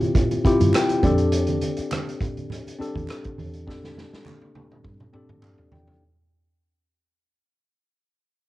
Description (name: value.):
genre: lush 1970s-style soul.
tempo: 102 BPM.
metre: 4/4.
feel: swing 54% on 16ths.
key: F major.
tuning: A4 = 440 Hz.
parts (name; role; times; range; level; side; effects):
tine electric piano; accompaniment; 0.0-6.0 s; C4 to G5; -24 LUFS; left 2 dB; cassette tape, plate reverb.
vintage drum kit; drums; 0.0-6.0 s; hi-hat, kick drum, rim click, snare drum, toms; -25 LUFS; right 1 dB; cassette tape.
congas; percussion; 0.0-5.9 s; none; -31 LUFS; right 5 dB; none.
vintage muted fingered electric bass; bass; 0.5-6.0 s; E2 to A2; -24 LUFS; equal; none.
group handclap; percussion; 0.7-5.6 s; none; -37 LUFS; right 2 dB; none.
room: light reverb.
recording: home recording on cassette.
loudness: -20 LUFS.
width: side -16 dB against mid.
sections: 0.0-6.0 A section.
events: fade-out 0.0-6.0; tine electric piano fill 0.5-1.3, 5.1-6.0; drum fill 3.7-6.0.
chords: 0.0 Dm11 (rootless); 1.0 F6.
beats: 0.16 0.74 | 1.33 1.92 2.50 3.09 | 3.67 4.26 4.85 5.43.